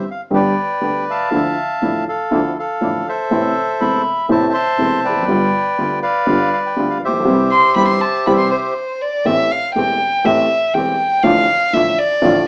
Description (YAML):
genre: tango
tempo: 121 BPM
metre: 4/4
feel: rubato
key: C major, A minor from 9.3 s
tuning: A4 = 440 Hz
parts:
  - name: bandoneon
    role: melody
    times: 0.0-8.7 s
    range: G4 to C6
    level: -20 LUFS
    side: equal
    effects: none
  - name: dark baby grand piano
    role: accompaniment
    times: 0.0-12.4 s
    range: E1 to G4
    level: -20 LUFS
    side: equal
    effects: none
  - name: bandoneon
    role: stabs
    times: 0.0-12.4 s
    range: F3 to G4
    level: -30 LUFS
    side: equal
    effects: none
  - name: dark double bass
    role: bass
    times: 0.0-12.4 s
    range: E1 to D2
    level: -35 LUFS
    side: equal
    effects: none
  - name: warm violin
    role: second line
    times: 7.5-12.5 s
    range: C5 to C6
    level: -18 LUFS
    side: equal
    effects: none
room: wet studio ambience, RT60 0.5 s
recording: rough home demo mix, vinyl crackle, small speaker sound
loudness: -16 LUFS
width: mono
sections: 0.0-9.3 A section; 9.3-12.5 B section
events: stop 8.8-9.3; violin solo 9.3-12.5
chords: 0.3 G; 1.3 Dmadd9; 3.3 Am; 5.3 G7; 7.3 C; 9.3 Am7; 11.2 Dm/A